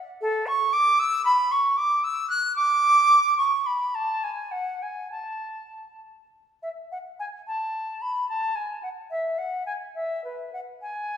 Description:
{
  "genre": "classical, baroque-style fantasia for unaccompanied flute",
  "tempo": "66-76 BPM (dotted quarters)",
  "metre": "6/8",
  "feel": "rubato",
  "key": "A major",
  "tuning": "A4 = 440 Hz",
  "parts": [
    { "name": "silver concert flute", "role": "solo", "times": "0.2-11.2 s", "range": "A4 to F#6", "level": "-22 LUFS", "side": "right 1 dB", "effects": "none" }
  ],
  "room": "wet recital hall reverb, RT60 1.7 s",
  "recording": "heard from further back in the room",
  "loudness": "-22 LUFS",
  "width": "side -8 dB against mid",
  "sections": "0.0-6.9 A section; 6.9-11.2 A section",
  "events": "none",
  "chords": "none"
}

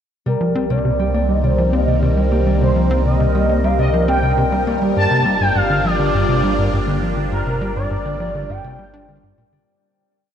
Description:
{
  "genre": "ambient, sequencer-driven space music",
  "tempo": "102 BPM",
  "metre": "4/4",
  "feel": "straight",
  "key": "G minor",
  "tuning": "A4 = 440 Hz",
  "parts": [
    { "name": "expressive synth lead", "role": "melody", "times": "0.3-9.4 s", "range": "Bb4 to A5", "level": "-21 LUFS", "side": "right 1 dB", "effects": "ensemble chorus, tape echo" },
    { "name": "phased analog pad", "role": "sustained chords", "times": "0.3-9.7 s", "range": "Eb3 to Bb4", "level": "-23 LUFS", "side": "right 1 dB", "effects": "phaser, chorus" },
    { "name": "Celtic harp", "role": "arpeggios", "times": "0.3-10.3 s", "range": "G2 to G4", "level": "-26 LUFS", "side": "left 6 dB", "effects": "auto-pan, tape echo" },
    { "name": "tight sequencer bass", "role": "riff", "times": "0.3-9.6 s", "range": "G2 to D4", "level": "-20 LUFS", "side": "equal", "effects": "cassette tape, tape echo" },
    { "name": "warm sub bass", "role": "bass", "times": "0.3-9.6 s", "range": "G1 to C2", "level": "-21 LUFS", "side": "equal", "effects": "none" },
    { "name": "bubbling stepped-filter texture", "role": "texture", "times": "2.6-9.7 s", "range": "none", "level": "barely audible", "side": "none", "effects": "none" }
  ],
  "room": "moderate huge ambient reverb, RT60 9.7 s",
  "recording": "none",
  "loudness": "-15 LUFS",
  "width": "side -9 dB against mid",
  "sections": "0.3-9.7 A section",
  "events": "fade-out 6.5-9.7",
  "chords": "0.3 Cm7; 5.0 Gm7"
}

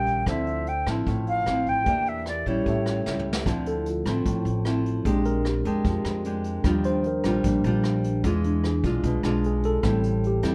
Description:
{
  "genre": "bossa nova",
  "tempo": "150 BPM",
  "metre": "4/4",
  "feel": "straight",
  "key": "D minor",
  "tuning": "A4 = 440 Hz",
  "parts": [
    { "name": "silver concert flute", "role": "melody", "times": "0.0-3.3 s", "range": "C#5 to G5", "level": "-28 LUFS", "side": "equal", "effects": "none" },
    { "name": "bright tine electric piano", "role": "accompaniment", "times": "0.0-10.5 s", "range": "E3 to E6", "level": "-31 LUFS", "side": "equal", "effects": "none" },
    { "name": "nylon-string guitar", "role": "accompaniment", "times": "0.0-10.5 s", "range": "A2 to G4", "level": "-30 LUFS", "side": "equal", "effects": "none" },
    { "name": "upright bass", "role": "bass", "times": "0.0-10.5 s", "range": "A1 to F2", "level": "-30 LUFS", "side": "equal", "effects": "none" },
    { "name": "vintage brush drum kit", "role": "drums", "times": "0.1-10.5 s", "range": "hi-hat, kick drum, rim click, snare drum, toms", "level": "-34 LUFS", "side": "equal", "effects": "none" }
  ],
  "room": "moderate studio reverb, RT60 0.8 s",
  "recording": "dark, warm production",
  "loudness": "-25 LUFS",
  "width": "mono",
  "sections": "0.0-3.5 A section; 3.5-10.5 B section",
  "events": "drum fill 3.1-3.5; tine electric piano solo 3.5-10.5",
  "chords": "0.3 Dm9; 1.9 Em7b5; 2.7 A7; 3.5 Dm9; 5.1 Bb13; 6.6 Ebmaj9; 8.2 E7b9; 9.8 Am7"
}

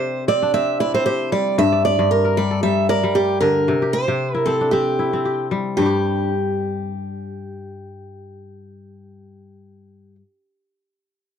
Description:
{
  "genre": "west african traditional, West African string and xylophone music",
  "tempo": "114 BPM",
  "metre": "4/4",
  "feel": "swing 55% on 16ths",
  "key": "unclear",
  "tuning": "A4 = 440 Hz",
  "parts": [
    { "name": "picked old ladder-braced acoustic guitar", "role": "melody", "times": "0.0-10.2 s", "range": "G4 to E5", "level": "-20 LUFS", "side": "right 3 dB", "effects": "none" },
    { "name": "kora", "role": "arpeggios", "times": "0.0-10.3 s", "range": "G2 to D5", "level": "-22 LUFS", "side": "left 4 dB", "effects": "none" }
  ],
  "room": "light reverb",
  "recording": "dry, close 1970s-style studio recording",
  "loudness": "-17 LUFS",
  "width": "side -8 dB against mid",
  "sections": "0.0-5.8 A section; 5.8-10.0 B section",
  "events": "none",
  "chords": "0.0 C; 1.6 Gm; 3.7 C; 5.8 N.C."
}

